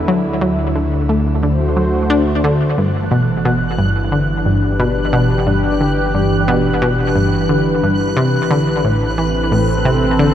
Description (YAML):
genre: ambient, sequencer-driven space music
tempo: 89 BPM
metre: 4/4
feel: straight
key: G major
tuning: A4 = 440 Hz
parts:
  - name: sweeping resonant pad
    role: sustained chords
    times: 0.0-10.3 s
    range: D3 to C5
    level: -17 LUFS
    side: equal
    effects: chorus, shimmer reverb
  - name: analog pluck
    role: riff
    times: 0.0-10.3 s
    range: G2 to D4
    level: -16 LUFS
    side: equal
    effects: chorus, tape echo, shimmer reverb
  - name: warm sub bass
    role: bass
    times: 0.0-10.3 s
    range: G1 to D2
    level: -23 LUFS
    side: equal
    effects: none
  - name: bubbling stepped-filter texture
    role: texture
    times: 3.0-10.3 s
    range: F#6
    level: -25 LUFS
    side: right 2 dB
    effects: chorus, built-in reverb, shimmer reverb
room: moderate huge ambient reverb, RT60 8.1 s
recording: none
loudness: -13 LUFS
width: side -10 dB against mid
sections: 0.0-2.8 A section; 2.8-10.3 B section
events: filter sweep on synth arpeggio sound 0.0-2.8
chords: 0.1 D7; 2.8 G6; 8.2 Amadd9